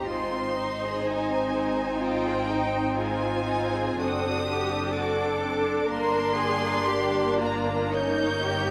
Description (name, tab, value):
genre	classical, slow romantic movement for string orchestra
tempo	54-64 BPM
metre	4/4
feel	rubato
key	unclear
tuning	A4 = 441 Hz
part	rich chamber violin section	melody	0.0-8.7 s	G5 to G6	-34 LUFS	equal	none
part	rich chamber violin section	second line	0.0-8.7 s	Ab3 to D5	-32 LUFS	equal	none
part	rich chamber viola section	accompaniment	0.0-8.7 s	Bb3 to Eb4	-32 LUFS	equal	none
part	dark chamber double bass section	bass	0.0-8.7 s	F#1 to Ab1	-37 LUFS	equal	none
part	rich studio cello section	bass	0.0-8.7 s	Eb4 to Bb4	-32 LUFS	equal	none
room	wet recital hall reverb, RT60 1.5 s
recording	none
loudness	-26 LUFS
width	mono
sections	0.0-8.7 A section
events	none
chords	0.1 Ab; 4.0 D7/F#; 5.9 Gm; 7.9 Eb7/G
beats	| 0.07 1.04 2.00 2.95 | 4.00 4.96 5.90 6.86 | 7.93